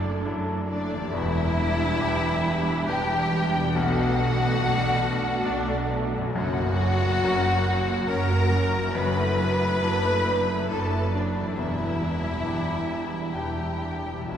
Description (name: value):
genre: cinematic, emotional film score for orchestra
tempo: 69 BPM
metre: 3/4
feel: rubato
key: unclear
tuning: A4 = 441 Hz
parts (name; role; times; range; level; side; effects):
- rich studio violin section; melody; 0.0-14.4 s; D5 to B5; -34 LUFS; left 3 dB; none
- rich studio violin section; second line; 0.0-14.4 s; D4 to B4; -27 LUFS; left 1 dB; none
- bright grand piano; accompaniment; 0.0-14.4 s; E1 to B4; -30 LUFS; left 2 dB; none
- warm studio viola section; accompaniment; 0.0-14.4 s; E3 to F#4; -33 LUFS; right 2 dB; none
- concert harp; arpeggios; 0.0-14.4 s; E2 to B4; -34 LUFS; left 4 dB; none
- clear studio double bass section; bass; 0.0-14.4 s; E1 to B1; -30 LUFS; right 2 dB; none
- warm studio cello section; bass; 0.0-14.4 s; E2 to B2; -30 LUFS; right 2 dB; none
room: wet cathedral reverb, RT60 6.5 s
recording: recorded in a church or concert hall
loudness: -22 LUFS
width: side -9 dB against mid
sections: 0.0-14.4 A section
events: none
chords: 0.0 Dadd9/F#; 1.1 Em7; 3.7 Bm7; 6.3 F#; 9.0 Dadd9/F#; 11.6 Em7